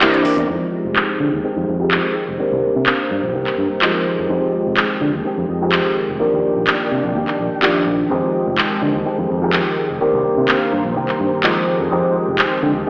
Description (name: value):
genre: filtered disco house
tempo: 126 BPM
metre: 4/4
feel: straight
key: F dorian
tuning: A4 = 440 Hz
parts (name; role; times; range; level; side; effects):
- muted trumpet section; melody; 0.0-12.6 s; C5 to G5; -29 LUFS; equal; vintage 12-bit sampler grit, low-pass filter, dub echo
- bright grand piano; accompaniment; 0.0-12.9 s; Eb3 to G4; -20 LUFS; equal; phaser, low-pass filter
- string machine, full ensemble; sustained chords; 0.0-12.9 s; Eb3 to Bb5; -25 LUFS; equal; ensemble chorus, low-pass filter
- direct-recorded clean electric guitar; riff; 0.0-12.9 s; Eb3 to G4; -23 LUFS; equal; lush chorus, low-pass filter
- house drum kit; drums; 0.0-12.5 s; handclaps, hi-hat; -20 LUFS; equal; low-pass filter on hats, low-pass filter on snare, low-pass filter on room
- fingered electric bass; bass; 0.2-12.9 s; F1 to D3; -21 LUFS; equal; low-pass filter
room: moderate lush hall reverb, RT60 2.2 s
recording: played on a big sound system in a bare room, stone room reverb, AM radio sound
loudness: -15 LUFS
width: side -32 dB against mid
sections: 0.5-12.9 A section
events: filter sweep 0.5-12.9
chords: 0.5 Fm9; 2.4 Cm7; 4.1 Fm9; 6.2 Ebmaj7; 8.1 Fm9; 10.0 Cm7; 11.7 Fm9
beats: 0.01 | 0.49 0.96 1.44 1.92 | 2.39 2.87 3.34 3.82 | 4.30 4.77 5.25 5.72 | 6.20 6.68 7.15 7.63 | 8.11 8.58 9.06 9.53 | 10.01 10.49 10.96 11.44 | 11.91 12.39 12.87